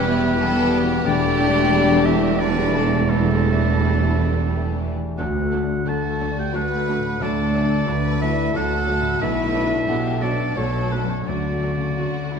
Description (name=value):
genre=cinematic, emotional film score for orchestra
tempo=89 BPM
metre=3/4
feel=rubato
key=D major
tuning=A4 = 435 Hz
part: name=rich studio violin section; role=melody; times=0.0-12.4 s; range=C#4 to G4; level=-32 LUFS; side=left 5 dB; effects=none
part: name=rich studio violin section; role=second line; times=0.0-12.4 s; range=E4 to B4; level=-29 LUFS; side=left 4 dB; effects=none
part: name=warm oboe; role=second line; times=0.0-12.4 s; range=A4 to A5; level=-26 LUFS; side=right 2 dB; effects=none
part: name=clear concert grand piano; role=accompaniment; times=0.0-12.4 s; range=B1 to F#5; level=-28 LUFS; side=left 3 dB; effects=none
part: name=clear symphonic viola section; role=accompaniment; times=0.0-12.4 s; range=D3 to B3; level=-29 LUFS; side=right 3 dB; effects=none
part: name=mellow French horn section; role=sustained chords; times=0.0-12.4 s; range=A3 to C#5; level=-26 LUFS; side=left 5 dB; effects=none
part: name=concert harp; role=arpeggios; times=0.0-12.4 s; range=B2 to F#5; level=-29 LUFS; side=left 9 dB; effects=none
part: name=clear studio double bass section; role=bass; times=0.0-12.4 s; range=E1 to D2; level=-26 LUFS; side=right 5 dB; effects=none
part: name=rich studio cello section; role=bass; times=0.0-12.4 s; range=D2 to D3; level=-26 LUFS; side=right 4 dB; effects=none
room=moderate scoring stage reverb, RT60 2.0 s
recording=none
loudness=-18 LUFS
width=side -6 dB against mid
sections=0.0-12.4 A section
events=none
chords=0.0 Em; 1.1 A7sus4/E; 5.2 D; 9.2 Bm7; 11.3 Dmaj7